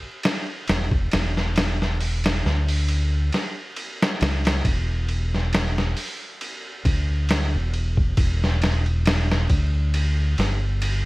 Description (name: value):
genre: trip hop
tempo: 68 BPM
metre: 4/4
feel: swing 54% on 16ths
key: E dorian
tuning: A4 = 435 Hz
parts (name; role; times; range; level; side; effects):
- trip hop sampler-style drum kit; drums; 0.2-11.0 s; hi-hat, kick drum, ride cymbal, snare drum; -24 LUFS; equal; none
- deep dub fingered electric bass; bass; 0.7-11.1 s; E1 to D2; -22 LUFS; equal; none
room: little or no reverb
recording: vinyl crackle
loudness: -20 LUFS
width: side -21 dB against mid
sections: 0.0-11.1 A section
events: none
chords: none